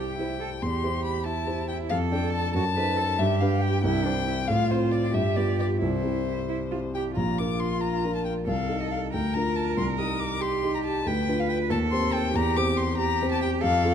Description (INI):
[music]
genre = quick classical-period movement for piano trio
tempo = 93 BPM (dotted quarters)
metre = 6/8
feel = straight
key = C major, Bb major from 7.2 s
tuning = A4 = 440 Hz
[part]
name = warm violin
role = melody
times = 0.0-13.9 s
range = C5 to Eb6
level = -30 LUFS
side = left 6 dB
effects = none
[part]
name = rich cello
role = second line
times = 0.0-13.9 s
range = D4 to B4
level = -31 LUFS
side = right 9 dB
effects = none
[part]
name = dark baby grand piano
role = accompaniment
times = 0.0-13.9 s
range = Bb1 to D5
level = -26 LUFS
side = equal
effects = none
[sound]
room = moderate recital hall reverb, RT60 1.8 s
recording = dark, warm production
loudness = -24 LUFS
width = side -8 dB against mid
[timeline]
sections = 0.0-7.2 A section; 7.2-13.9 B section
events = none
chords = 0.0 C; 0.6 C/E; 1.9 Dm/F; 2.5 F#dim7; 3.2 G; 3.8 C; 4.5 F/A; 5.2 G7; 5.8 C; 7.2 Bb; 8.5 Adim/C; 9.1 Bb/D; 9.8 Cm; 11.1 Bdim/D; 11.7 Cm/Eb; 12.3 C/E